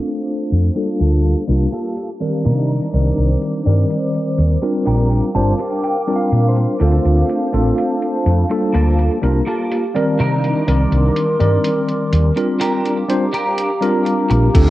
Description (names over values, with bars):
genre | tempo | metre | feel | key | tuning
vaporwave | 62 BPM | 4/4 | straight | C dorian | A4 = 442 Hz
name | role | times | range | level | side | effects
tine electric piano | accompaniment | 0.0-14.7 s | Eb3 to D5 | -18 LUFS | equal | medium stereo tremolo, lush chorus, tape echo
warbly tape-like pad | sustained chords | 0.1-14.7 s | G4 to D6 | -24 LUFS | equal | chorus, built-in reverb, vintage 12-bit sampler grit
gated 80s digital drum machine | drums | 0.0-14.7 s | crash cymbal, hi-hat | -34 LUFS | left 1 dB | overdrive
woody fretless electric bass | bass | 0.5-14.7 s | G1 to C3 | -15 LUFS | equal | tube saturation, lush chorus
clean electric guitar | riff | 0.8-14.3 s | Bb3 to A5 | -24 LUFS | right 1 dB | ensemble chorus, vintage 12-bit sampler grit, low-pass filter, tape echo
electronic kick drum | drums | 14.5-14.7 s | none | -13 LUFS | equal | overdrive
room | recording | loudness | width
light reverb | worn, warbling old tape, cassette tape, warbly pitch drift, low-pass filter | -14 LUFS | side -16 dB against mid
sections
0.0-14.5 A section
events
filter sweep on clean electric guitar 0.0-14.5; filter sweep 0.0-14.5; clean electric guitar fill 4.9-6.8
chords
0.0 Dm7; 1.0 Gm9; 2.5 Cm9; 4.9 Bb6; 6.8 Dm7; 8.7 Gm9; 10.2 Cm9; 12.6 Bb6